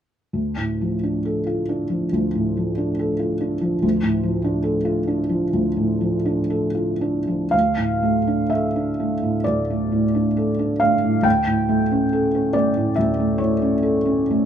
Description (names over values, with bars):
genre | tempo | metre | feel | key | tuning
classical, romantic nocturne for solo piano | 56-74 BPM | 4/4 | rubato | D minor | A4 = 436 Hz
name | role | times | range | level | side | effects
felt-muted upright piano | solo | 0.3-14.5 s | D2 to G5 | -18 LUFS | equal | none
room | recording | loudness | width
light reverb | dark, warm production | -18 LUFS | side -9 dB against mid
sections
0.3-7.5 A section; 7.5-14.5 B section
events
none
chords
0.3 Dm; 11.2 A7/D